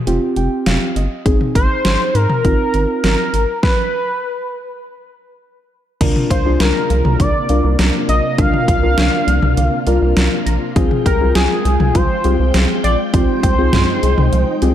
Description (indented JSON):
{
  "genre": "synth-pop",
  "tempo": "101 BPM",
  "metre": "4/4",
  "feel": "straight",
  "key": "unclear",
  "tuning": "A4 = 440 Hz",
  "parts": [
    { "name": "muted felt-like synth keys", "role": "accompaniment", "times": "0.1-14.7 s", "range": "C4 to G5", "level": "-21 LUFS", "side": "left 1 dB", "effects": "chorus" },
    { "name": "rubbery square bass", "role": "bass", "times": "0.1-14.7 s", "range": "F1 to Ab2", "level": "-17 LUFS", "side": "equal", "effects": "none" },
    { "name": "pop drum kit", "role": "drums", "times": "0.1-14.7 s", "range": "crash cymbal, hi-hat, kick drum, snare drum, toms", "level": "-18 LUFS", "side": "equal", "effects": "overdrive" },
    { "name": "octave-doubled lead", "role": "melody", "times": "1.6-14.7 s", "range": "Ab4 to F5", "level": "-19 LUFS", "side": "equal", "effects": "chorus, digital delay" },
    { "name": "ensemble organ-string", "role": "sustained chords", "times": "6.0-14.7 s", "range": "C3 to G5", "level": "-23 LUFS", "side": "equal", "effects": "ensemble chorus" },
    { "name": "analog pluck", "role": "arpeggios", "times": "6.0-14.7 s", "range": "D3 to C6", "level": "-26 LUFS", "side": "right 2 dB", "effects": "chorus, phaser, digital delay" }
  ],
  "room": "light reverb",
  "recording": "dark, warm production",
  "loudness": "-13 LUFS",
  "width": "side -10 dB against mid",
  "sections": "0.0-6.0 A section; 6.0-14.7 B section",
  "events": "synth keys fill 0.1-1.3; stop 3.6-6.0",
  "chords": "0.0 F5; 1.3 Abadd9; 3.6 N.C.; 6.0 Bb; 10.8 Fmadd9",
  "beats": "0.07 0.66 | 1.26 1.85 2.44 3.04 | 3.63 4.23 4.82 5.42 | 6.01 6.60 7.20 7.79 | 8.38 8.98 9.57 10.17 | 10.76 11.36 11.95 12.54 | 13.14 13.73 14.33"
}